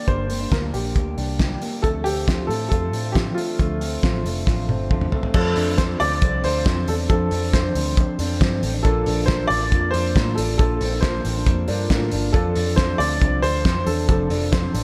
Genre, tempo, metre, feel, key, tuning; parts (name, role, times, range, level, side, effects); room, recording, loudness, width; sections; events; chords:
jangly indie pop; 137 BPM; 4/4; straight; A4 = 440 Hz
warm upright piano; melody; 0.0-14.8 s; F4 to D5; -28 LUFS; equal; slapback echo, tape echo
fingerpicked steel-string acoustic guitar; accompaniment; 0.0-14.8 s; G2 to A4; -32 LUFS; equal; slapback echo
electric guitar through a small old amp; arpeggios; 0.0-14.8 s; F3 to G4; -32 LUFS; equal; slapback echo, tape echo
vintage muted picked electric bass; bass; 0.1-14.8 s; F1 to A2; -28 LUFS; equal
cloth-damped thuddy drum kit; drums; 0.1-14.8 s; crash cymbal, hi-hat, kick drum, snare drum, toms; -24 LUFS; equal
clear upright piano; accompaniment; 5.3-14.8 s; Bb3 to A4; -36 LUFS; equal
light reverb; -21 LUFS; mono
0.0-5.3 A section; 5.3-14.8 B section
drum fill 4.5-5.3
0.0 Gm; 1.8 Dm7; 5.3 F6; 8.8 Bbmaj7; 12.3 F6